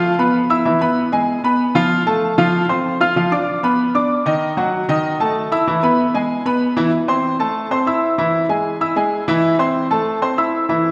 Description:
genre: latin.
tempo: 191 BPM.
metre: 4/4.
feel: straight.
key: A harmonic minor from 6.9 s.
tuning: A4 = 439 Hz.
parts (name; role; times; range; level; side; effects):
clear baby grand piano; solo; 0.0-10.9 s; D#3 to F6; -17 LUFS; equal; none.
room: wet concert hall reverb, RT60 2.1 s.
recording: recorded in a church or concert hall.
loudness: -17 LUFS.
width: mono.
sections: 0.0-6.9 A section; 6.9-10.9 B section.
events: none.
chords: 0.0 Fmaj7(b5, no3); 0.7 E; 1.9 F; 3.2 Bdim; 4.4 D#dim; 5.7 E; 6.9 Am; 8.2 E; 9.4 Am.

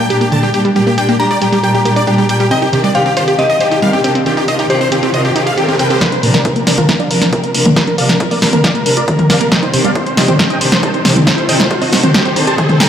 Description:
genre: uplifting trance.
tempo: 137 BPM.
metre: 4/4.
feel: straight.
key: C dorian.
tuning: A4 = 444 Hz.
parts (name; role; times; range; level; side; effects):
big supersaw lead; melody; 0.0-12.9 s; G4 to Bb5; -17 LUFS; equal; sidechain pumping, low-pass filter, dub echo.
glassy synth bell; second line; 0.0-5.9 s; C5 to Bb5; -19 LUFS; left 3 dB; chorus, dub echo.
clear symphonic string section; sustained chords; 0.0-12.9 s; Bb2 to Bb4; -16 LUFS; equal; sidechain pumping.
wide unison pluck; arpeggios; 0.0-12.8 s; Bb2 to C5; -18 LUFS; right 2 dB; sidechain pumping, dub echo.
punchy analog drum machine; drums; 0.1-12.9 s; hi-hat, snare drum, toms; -14 LUFS; equal; sidechain pumping on hats, low-pass filter on hats, low-pass filter on snare, sidechain pumping on toms, low-pass filter on toms.
riser; sound effects; 3.5-12.9 s; none; -22 LUFS; equal; none.
electronic kick drum; drums; 6.0-12.7 s; none; -21 LUFS; equal; high-pass filter on kick.
room: light reverb, digital ambience.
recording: played on a big sound system in a bare room, stone room reverb.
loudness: -10 LUFS.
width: side -9 dB against mid.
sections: 0.0-6.0 A section; 6.0-12.9 B section.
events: filter sweep on synth arpeggio sound 0.0-6.0, 6.0-12.9; riser 3.5-6.0, 6.0-12.9; build-up 6.0-12.9; drum fill 6.0-12.9; filter sweep on supersaw synth 6.0-12.9.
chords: 0.0 Gm; 2.5 Cmadd9; 6.0 Bbadd9; 9.5 Cmadd9.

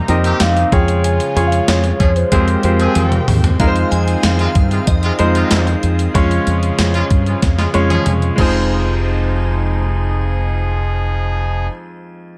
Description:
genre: 1980s-style pop.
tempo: 94 BPM.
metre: 4/4.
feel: straight.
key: F minor.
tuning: A4 = 436 Hz.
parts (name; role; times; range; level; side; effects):
hollow clarinet-like synth lead; melody; 0.0-3.2 s; C5 to Bb5; -24 LUFS; equal; chorus, phaser, digital delay.
clear grand piano; accompaniment; 0.0-12.4 s; F2 to Eb5; -22 LUFS; equal; none.
brassy analog pad; sustained chords; 0.0-11.7 s; C3 to G5; -27 LUFS; equal; chorus.
deep dub fingered electric bass; bass; 0.1-11.7 s; F1 to G2; -19 LUFS; equal; none.
gated 80s digital drum machine; drums; 0.1-8.5 s; crash cymbal, hi-hat, kick drum, snare drum, tambourine, toms; -20 LUFS; equal; gated reverb, gated reverb snare.
clear horn section; stabs; 0.2-11.7 s; C3 to Ab4; -27 LUFS; equal; none.
shimmering bell with halo; second line; 3.6-11.7 s; C5 to Ab5; -32 LUFS; equal; ensemble chorus, digital delay.
room: light reverb.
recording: dark, warm production.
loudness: -15 LUFS.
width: mono.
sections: 0.0-3.6 A section; 3.6-8.7 B section; 8.7-11.3 C section.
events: drum fill 3.0-3.6, 7.4-8.7.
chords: 0.0 Eb6/F; 0.7 Db/F; 2.3 Fmadd9; 3.6 Ab6/F; 6.1 Db/F; 8.4 Fm7.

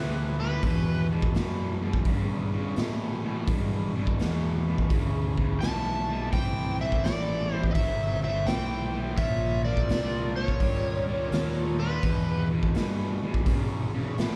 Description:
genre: blues rock power trio and southern rock.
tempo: 84 BPM.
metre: 4/4.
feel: swing 66% on 8ths.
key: E minor.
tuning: A4 = 440 Hz.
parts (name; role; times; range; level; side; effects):
overdriven slide guitar; melody; 0.0-1.1, 5.6-12.5 s; B4 to A5; -34 LUFS; equal; slapback echo.
dark smooth lead guitar; second line; 0.0-1.1, 5.6-12.5 s; G4 to E5; -46 LUFS; equal; overdrive, slapback echo.
cranked stack guitar; riff; 0.0-14.4 s; E2 to G3; -36 LUFS; equal; overdrive, slapback echo.
fuzz fingered electric bass; bass; 0.0-14.4 s; G1 to B2; -32 LUFS; equal; overdrive.
raw garage drum kit; drums; 0.6-14.4 s; hi-hat, kick drum, snare drum; -31 LUFS; equal; none.
room: small room ambience.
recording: live gig heard through the venue's PA, club reverb.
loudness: -27 LUFS.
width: mono.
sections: 0.0-14.4 A section.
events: none.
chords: 0.0 Am; 0.6 Em7; 6.3 Am7; 9.2 A#m6; 12.0 Em.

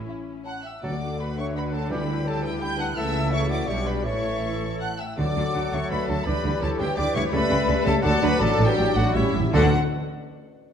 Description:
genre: quick classical-period movement for symphony orchestra.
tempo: 153-172 BPM.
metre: 3/4.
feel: rubato.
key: D major.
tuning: A4 = 444 Hz.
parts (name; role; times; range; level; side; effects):
rich chamber violin section; melody; 0.0-9.7 s; E4 to G6; -31 LUFS; left 1 dB; none.
warm clarinet; second line; 0.0-9.7 s; D4 to G5; -35 LUFS; left 2 dB; none.
rich chamber viola section; accompaniment; 0.0-9.8 s; F#3 to B4; -33 LUFS; left 1 dB; none.
rich chamber violin section; second line; 0.1-9.7 s; C#4 to G5; -35 LUFS; left 4 dB; none.
mellow hollow concert flute; second line; 0.5-9.7 s; G4 to B5; -33 LUFS; left 3 dB; none.
mellow trumpet section; stabs; 0.5-9.7 s; E4 to G5; -31 LUFS; equal; none.
clear oboe; second line; 0.8-9.7 s; G4 to D5; -37 LUFS; right 2 dB; none.
dark bassoon; accompaniment; 0.8-9.7 s; D3 to G3; -33 LUFS; right 2 dB; none.
dark French horn section; sustained chords; 0.8-9.7 s; E3 to A4; -31 LUFS; left 5 dB; none.
clear chamber double bass section; bass; 0.8-9.7 s; A1 to D2; -29 LUFS; right 2 dB; none.
rich studio cello section; bass; 0.8-9.7 s; A2 to D3; -29 LUFS; right 2 dB; none.
timpani; percussion; 0.8-2.4, 5.2-5.7, 8.4-9.7 s; A2 to D3; -29 LUFS; left 1 dB; none.
room: moderate scoring stage reverb, RT60 1.5 s.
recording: dark, warm production.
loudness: -21 LUFS.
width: side -8 dB against mid.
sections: 0.8-9.5 A section; 9.5-10.7 B section.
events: timpani fill 9.2-9.5.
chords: 0.0 A (rootless); 0.8 D; 1.9 Em7/D; 3.0 A/C#; 3.7 G/B; 4.1 A; 5.2 D; 6.3 Em7/D; 7.3 A7/C#; 8.0 D; 8.4 D/A; 9.2 A7; 9.5 D5.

